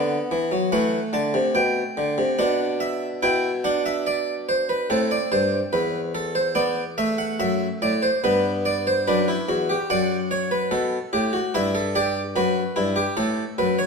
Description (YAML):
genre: classical, baroque-style 3-part fugue for harpsichord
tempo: 72 BPM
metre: 4/4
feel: straight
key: G major from 3.2 s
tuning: A4 = 440 Hz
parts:
  - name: harpsichord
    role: solo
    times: 0.0-13.9 s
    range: E2 to A5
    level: -20 LUFS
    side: equal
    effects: none
room: wet stone room reverb, RT60 1.3 s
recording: heard from further back in the room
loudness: -20 LUFS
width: side -4 dB against mid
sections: 0.0-3.2 A section; 3.2-13.9 B section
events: none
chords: 0.0 D7; 1.6 G/B; 4.9 Am7; 6.6 D7; 8.2 G; 9.9 D/F#; 11.5 Em7/G; 13.2 N.C.